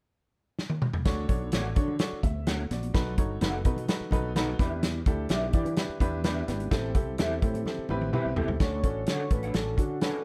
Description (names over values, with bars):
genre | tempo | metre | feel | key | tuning
uptempo 1960s-style soul | 127 BPM | 4/4 | straight | D major | A4 = 439 Hz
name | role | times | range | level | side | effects
natural country drum kit | drums | 0.6-10.1 s | hi-hat, kick drum, snare drum, toms | -30 LUFS | equal | none
warm upright piano | accompaniment | 1.1-10.2 s | C4 to B5 | -36 LUFS | equal | none
fretless electric bass | bass | 1.1-10.1 s | F#1 to E3 | -35 LUFS | equal | ensemble chorus
congas | percussion | 1.1-8.6 s | none | -43 LUFS | equal | none
electric guitar through a small old amp | stabs | 1.5-10.1 s | D4 to F#5 | -38 LUFS | equal | ensemble chorus
mellow tonewheel organ | melody | 8.6-10.2 s | F#4 to C#5 | -36 LUFS | equal | chorus vibrato, slow rotary speaker
room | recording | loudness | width
light reverb | dark, warm production | -28 LUFS | mono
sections
0.0-1.1 A section; 1.1-8.6 B section; 8.6-10.2 C section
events
drum fill 0.6-1.1, 7.7-8.6; upright piano fill 3.9-4.8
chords
0.0 N.C.; 1.1 Dmaj7; 2.9 B7; 4.6 Em7; 6.7 Am7; 8.6 Dmaj7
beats
0.11 0.58 | 1.05 1.52 2.00 2.47 | 2.94 3.41 3.88 4.36 | 4.83 5.30 5.77 6.24 | 6.71 7.18 7.66 8.13 | 8.60 9.07 9.54 10.01